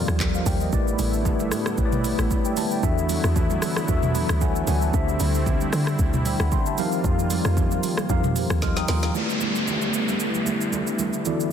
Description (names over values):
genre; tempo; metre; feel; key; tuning
amapiano; 114 BPM; 4/4; swing 55% on 16ths; A minor; A4 = 440 Hz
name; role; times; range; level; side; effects
mellow tine electric piano; accompaniment; 0.0-11.5 s; D3 to F6; -26 LUFS; left 1 dB; medium stereo tremolo, low-pass filter
warm analog pad; sustained chords; 0.0-11.5 s; D3 to F4; -30 LUFS; equal; chorus, low-pass filter
deep log drum bass; bass; 0.0-9.1 s; A1 to D3; -25 LUFS; equal; none
afro-pop drum kit; drums; 0.1-11.5 s; handclaps, hi-hat, kick drum, rim click, shaker, snare drum, toms; -26 LUFS; equal; soft clipping on snare
congas; percussion; 0.2-11.4 s; none; -33 LUFS; right 7 dB; none
downlifter; sound effects; 9.1-11.5 s; none; -28 LUFS; equal; none
room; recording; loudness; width
light reverb; dense, heavily limited modern master; -20 LUFS; side -8 dB against mid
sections
0.0-9.1 A section; 9.1-11.5 B section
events
drop 0.0-9.1; tine electric piano fill 3.9-4.9, 8.4-9.1; drum fill 8.6-9.1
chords
0.0 F9sus4; 0.7 A9sus4; 2.8 E9sus4; 4.9 D9sus4; 6.8 F9sus4; 9.1 A9sus4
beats
0.20 | 0.73 1.25 1.78 2.31 | 2.83 3.36 3.88 4.41 | 4.94 5.46 5.99 6.52 | 7.04 7.57 8.10 8.62 | 9.15 9.68 10.20 10.73 | 11.25